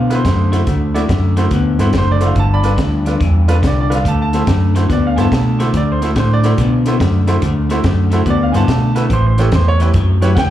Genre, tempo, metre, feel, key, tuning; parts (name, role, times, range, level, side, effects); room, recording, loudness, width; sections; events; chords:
electric blues shuffle; 142 BPM; 4/4; swing 66% on 8ths; D mixolydian; A4 = 440 Hz
clear upright piano; accompaniment; 0.0-10.5 s; D4 to B5; -20 LUFS; right 3 dB; slapback echo
electric guitar through a small old amp; riff; 0.0-10.5 s; G2 to B3; -19 LUFS; left 3 dB; slapback echo
vintage muted fingered electric bass; bass; 0.0-10.5 s; F#1 to B2; -14 LUFS; equal
compact cocktail drum kit; drums; 0.1-10.5 s; hi-hat, kick drum, snare drum; -20 LUFS; equal
light reverb, small room ambience; live gig heard through the venue's PA, club reverb; -12 LUFS; side -12 dB against mid
0.0-10.5 A section
0.0 D7; 2.4 G7; 4.0 D7; 9.1 A7